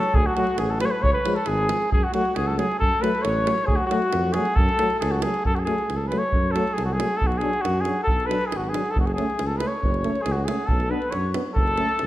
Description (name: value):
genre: balkan folk, Balkan brass band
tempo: 136 BPM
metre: 2/4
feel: straight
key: F# minor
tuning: A4 = 441 Hz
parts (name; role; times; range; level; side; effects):
- warm flugelhorn; melody; 0.0-12.1 s; F#4 to C#5; -24 LUFS; equal; none
- mellow trumpet; second line; 0.0-5.2, 8.0-12.1 s; F#4 to C#5; -31 LUFS; left 3 dB; none
- davul; percussion; 0.0-12.1 s; none; -26 LUFS; right 1 dB; none
- mellow tuba; bass; 0.1-12.1 s; F#1 to F#2; -28 LUFS; equal; none
- mellow trombone; accompaniment; 0.4-11.9 s; E#3 to B3; -32 LUFS; right 3 dB; none
- warm euphonium; accompaniment; 0.4-11.9 s; G#3 to D4; -31 LUFS; left 4 dB; none
room: wet recital hall reverb, RT60 1.7 s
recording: none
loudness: -20 LUFS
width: side -15 dB against mid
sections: 0.0-5.4 A section; 5.4-12.1 B section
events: none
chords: 0.1 D; 1.0 C#; 1.9 F#m; 3.7 D; 4.6 F#m; 7.2 Bm; 9.0 F#m; 10.7 Bm; 11.6 F#m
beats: | 0.14 0.59 | 1.03 1.47 | 1.92 2.36 | 2.80 3.24 | 3.68 4.12 | 4.56 5.00 | 5.44 5.88 | 6.32 6.76 | 7.20 7.64 | 8.08 8.52 | 8.95 9.39 | 9.83 10.26 | 10.70 11.13 | 11.56 11.99